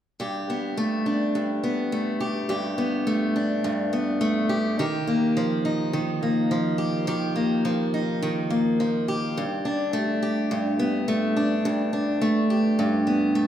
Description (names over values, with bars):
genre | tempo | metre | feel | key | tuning
pop | 105 BPM | 4/4 | straight | unclear | A4 = 439 Hz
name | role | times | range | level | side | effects
picked steel-string acoustic guitar | solo | 0.2-13.5 s | G2 to G4 | -22 LUFS | equal | none
room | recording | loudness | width
wet recital hall reverb, RT60 1.6 s | recorded in a church or concert hall | -22 LUFS | side -10 dB against mid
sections
0.2-9.4 A section; 9.4-13.5 B section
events
none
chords
0.2 Gadd9; 4.8 Ebadd9; 9.4 Gadd9